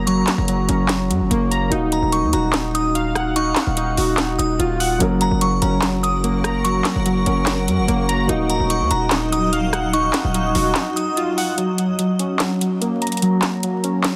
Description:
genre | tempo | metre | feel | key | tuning
hip hop, trap | 146 BPM | 4/4 | half-time | F# major | A4 = 441 Hz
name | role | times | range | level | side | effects
dark concert grand piano | accompaniment | 0.0-11.6 s | F#3 to E#5 | -30 LUFS | equal | none
warbly lo-fi synth keys | arpeggios | 0.0-14.2 s | F#3 to A#5 | -23 LUFS | equal | chorus, low-pass filter, delay
distorted 808-style bass | bass | 0.0-10.7 s | D#1 to F#2 | -25 LUFS | equal | distortion
glassy synth bell | second line | 0.1-11.2 s | A#5 to D#6 | -28 LUFS | equal | chorus, phaser, delay
trap drum kit | drums | 0.1-14.1 s | handclaps, hi-hat, rim click, snare drum | -25 LUFS | equal | none
granular cloud pad | sustained chords | 5.7-11.5 s | F#3 to D#6 | -31 LUFS | equal | built-in reverb
room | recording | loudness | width
little or no reverb | dense, heavily limited modern master, vinyl crackle | -19 LUFS | mono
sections
0.0-11.6 A section; 11.6-14.2 B section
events
break 10.8-11.6; kick muted 11.6-14.2; filter sweep on synth keys 11.6-14.2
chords
0.0 F#; 1.7 D#madd9; 5.0 F#; 8.3 D#madd9; 11.6 F#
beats
| 0.07 0.48 0.89 1.30 | 1.72 2.13 2.54 2.95 | 3.36 3.77 4.18 4.59 | 5.00 5.42 5.83 6.24 | 6.65 7.06 7.47 7.88 | 8.29 8.70 9.11 9.52 | 9.94 10.35 10.76 11.17 | 11.58 11.99 12.40 12.81 | 13.22 13.63 14.04

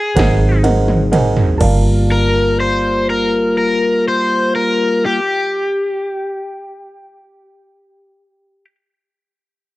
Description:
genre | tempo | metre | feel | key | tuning
slow blues | 41 BPM (dotted quarters) | 12/8 | straight | G minor | A4 = 440 Hz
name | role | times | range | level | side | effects
overdriven semi-hollow guitar | melody | 0.0-8.6 s | G4 to C5 | -16 LUFS | left 1 dB | none
clear concert grand piano | accompaniment | 0.2-5.2 s | Bb4 to A5 | -21 LUFS | right 4 dB | none
mellow tonewheel organ | sustained chords | 0.2-5.2 s | Gb3 to Ab4 | -19 LUFS | left 1 dB | slow rotary speaker
vintage muted fingered electric bass | bass | 0.2-5.2 s | G1 to Ab1 | -16 LUFS | right 1 dB | tube saturation
80s electronic pad drums | drums | 0.2-1.8 s | crash cymbal, kick drum, ride cymbal, snare drum, toms | -17 LUFS | right 1 dB | gated reverb on snare and toms
room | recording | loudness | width
light reverb | worn, warbling old tape, cassette tape, warbly pitch drift | -13 LUFS | side -17 dB against mid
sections
0.0-1.6 A section; 1.6-7.5 B section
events
slowing down 0.0-1.6; overdriven electric guitar solo 0.0-1.6; stop 0.0; drum fill 0.2-1.6; grand piano fill 0.2-1.6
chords
0.2 Ab7; 1.6 Gm9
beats
0.16 | 1.60 3.07 4.54 6.01

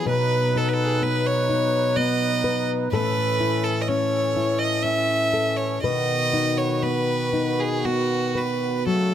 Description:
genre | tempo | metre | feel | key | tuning
celtic folk, Celtic slow air | 59-64 BPM | 3/4 | rubato | unclear | A4 = 440 Hz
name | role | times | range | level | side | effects
clear fiddle | melody | 0.0-9.1 s | F#4 to E5 | -23 LUFS | right 2 dB | none
nylon-string guitar | accompaniment | 0.0-9.1 s | A2 to B4 | -24 LUFS | left 3 dB | none
hand-pumped harmonium | sustained chords | 0.0-9.1 s | C#3 to B4 | -30 LUFS | right 3 dB | none
room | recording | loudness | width
light reverb | close, detailed microphones | -20 LUFS | side -10 dB against mid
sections
0.0-9.1 A section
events
none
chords
0.1 B; 2.9 A; 5.8 B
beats
| 0.07 1.02 1.96 | 2.92 3.88 4.84 | 5.81 6.82 7.84 | 8.86

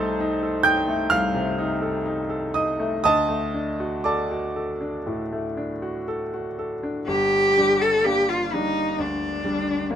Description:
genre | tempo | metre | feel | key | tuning
classical, romantic duo for cello and grand piano | 58-67 BPM | 4/4 | rubato | unclear | A4 = 441 Hz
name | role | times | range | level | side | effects
clear baby grand piano | accompaniment | 0.0-10.0 s | G1 to G6 | -23 LUFS | equal | none
rich cello | melody | 7.1-10.0 s | C4 to A4 | -20 LUFS | equal | none
room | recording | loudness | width
little or no reverb | close, detailed microphones | -21 LUFS | side -9 dB against mid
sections
0.0-7.1 A section; 7.1-10.0 B section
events
none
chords
0.0 Adim/C; 3.0 D; 7.1 Gm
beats
0.20 1.10 2.04 | 3.02 4.04 5.05 6.06 | 7.06 8.04 8.97 9.88

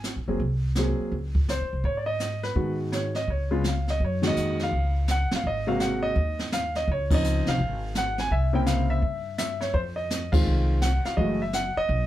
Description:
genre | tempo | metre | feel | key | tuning
jazz piano trio | 167 BPM | 4/4 | swing 64% on 8ths | Db major | A4 = 440 Hz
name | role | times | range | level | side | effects
upright bass | bass | 0.0-12.1 s | Gb1 to Ab2 | -27 LUFS | equal | none
jazz brush drum kit | drums | 0.0-12.1 s | brushed snare drum, crash cymbal, hi-hat, kick drum, ride cymbal, snare drum | -28 LUFS | right 1 dB | none
warm baby grand piano | melody | 0.3-12.1 s | C3 to Ab5 | -27 LUFS | equal | none
room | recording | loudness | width
moderate studio reverb, RT60 0.6 s | heard from further back in the room | -23 LUFS | side -13 dB against mid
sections
0.0-4.0 A section; 4.0-12.1 B section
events
band accent 4.2, 7.1, 10.3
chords
0.0 Ab9; 1.1 Dbsus2; 2.6 Abm7; 3.3 Db; 4.0 Gb69; 5.4 Ab9; 6.9 Dbmaj9; 8.3 C7b9; 9.8 Fm7; 11.2 Gbm9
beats
0.04 0.41 0.77 | 1.12 1.49 1.84 2.21 | 2.56 2.92 3.29 3.64 | 4.00 4.36 4.72 5.08 | 5.44 5.80 6.16 6.52 | 6.88 7.24 7.60 7.96 | 8.31 8.67 9.03 9.39 | 9.75 10.11 10.47 10.83 | 11.19 11.55 11.90

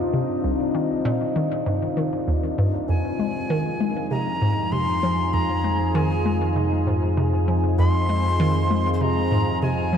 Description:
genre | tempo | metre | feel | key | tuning
ambient, sequencer-driven space music | 98 BPM | 4/4 | straight | F dorian | A4 = 443 Hz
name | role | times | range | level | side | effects
evolving wavetable pad | sustained chords | 0.0-10.0 s | C2 to Ab4 | -25 LUFS | left 1 dB | phaser, built-in reverb
hollow square pluck | riff | 0.1-10.0 s | C2 to Ab3 | -24 LUFS | equal | chorus, ping-pong delay
breathy bright jazz flute | melody | 2.9-10.0 s | Ab5 to C6 | -27 LUFS | left 1 dB | ping-pong delay
analog drone | bass | 4.6-10.0 s | F2 | -24 LUFS | right 1 dB | chorus
room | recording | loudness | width
wet huge ambient reverb, RT60 7.7 s | dark, warm production | -20 LUFS | side -8 dB against mid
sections
0.0-2.9 A section; 2.9-10.0 B section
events
none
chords
0.0 Cm; 2.9 Fm7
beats
| 0.44 1.05 1.66 2.28 | 2.89 3.50 4.11 4.73 | 5.34 5.95 6.56 7.17 | 7.79 8.40 9.01 9.62

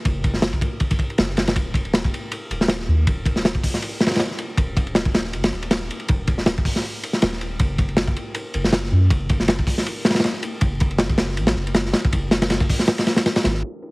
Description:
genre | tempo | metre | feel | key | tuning
drum and bass, jungle | 159 BPM | 4/4 | swing 54% on 16ths | unclear | A4 = 440 Hz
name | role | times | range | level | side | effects
soft dub sub bass | bass | 0.1-13.6 s | Eb1 to Gb2 | -24 LUFS | equal | none
crunchy breakbeat drum kit | drums | 0.1-13.9 s | hi-hat, kick drum, ride cymbal, snare drum | -19 LUFS | equal | high-pass filter on kick, high-pass filter on cymbals, high-pass filter on hats, high-pass filter on snare, high-pass filter on room
room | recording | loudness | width
light reverb | heavily compressed radio sound, vinyl crackle, low-pass filter | -18 LUFS | side -27 dB against mid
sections
0.0-13.6 A section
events
none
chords
none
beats
| 0.05 0.43 0.81 1.18 | 1.56 1.94 2.31 2.69 | 3.07 3.45 3.83 4.20 | 4.58 4.96 5.33 5.71 | 6.09 6.47 6.84 7.22 | 7.60 7.97 8.35 8.73 | 9.11 9.48 9.86 10.24 | 10.62 10.99 11.37 11.75 | 12.13 12.50 12.88 13.26 | 13.64

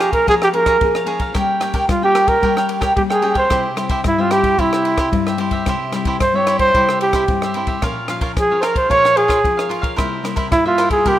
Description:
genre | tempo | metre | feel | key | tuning
samba and choro | 111 BPM | 4/4 | straight | unclear | A4 = 439 Hz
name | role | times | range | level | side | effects
breathy trumpet | melody | 0.0-11.2 s | E4 to Db5 | -15 LUFS | right 1 dB | none
cavaquinho | accompaniment | 0.0-11.2 s | E4 to Bb5 | -22 LUFS | right 2 dB | none
nylon-string guitar | accompaniment | 0.0-11.2 s | G2 to Ab4 | -23 LUFS | left 6 dB | none
compact cocktail drum kit | drums | 0.0-11.2 s | kick drum, ride cymbal, rim click | -23 LUFS | equal | none
room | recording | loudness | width
moderate plate reverb, RT60 1.8 s, small room ambience | rough home demo mix | -14 LUFS | side -12 dB against mid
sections
0.0-11.2 A section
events
none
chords
0.0 Bbm7/F; 1.4 Gdim; 3.5 C; 7.8 Bbm; 10.0 C7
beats
0.28 0.81 | 1.35 1.89 2.43 2.97 | 3.51 4.05 4.59 5.13 | 5.67 6.21 6.75 7.29 | 7.83 8.37 8.90 9.44 | 9.98 10.52 11.06

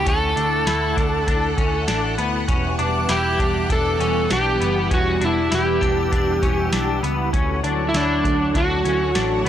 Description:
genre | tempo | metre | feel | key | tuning
dream pop | 99 BPM | 4/4 | straight | D major | A4 = 440 Hz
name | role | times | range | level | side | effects
overdriven slide guitar | melody | 0.0-9.5 s | D4 to A4 | -22 LUFS | right 1 dB | analog delay
string machine, full ensemble | sustained chords | 0.0-9.5 s | E3 to F#5 | -25 LUFS | equal | ensemble chorus
electric guitar at the edge of break-up | arpeggios | 0.0-9.5 s | B3 to E4 | -25 LUFS | left 4 dB | ensemble chorus, analog delay
vintage muted picked electric bass | bass | 0.0-9.5 s | E1 to D2 | -25 LUFS | equal | none
shimmering bell with halo | texture | 0.0-7.3 s | C#6 to E6 | -35 LUFS | right 2 dB | ensemble chorus, phaser, analog delay
soft vintage rhythm box | drums | 0.1-9.5 s | hi-hat, kick drum, snare drum | -24 LUFS | equal | none
room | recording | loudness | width
little or no reverb | dry, gritty hardware recording | -18 LUFS | side -10 dB against mid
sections
0.0-9.5 A section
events
none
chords
0.0 Dmaj7; 2.5 Em7; 7.3 Dmaj7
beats
| 0.06 0.67 1.27 1.88 | 2.49 3.09 3.70 4.30 | 4.91 5.52 6.12 6.73 | 7.33 7.94 8.55 9.15

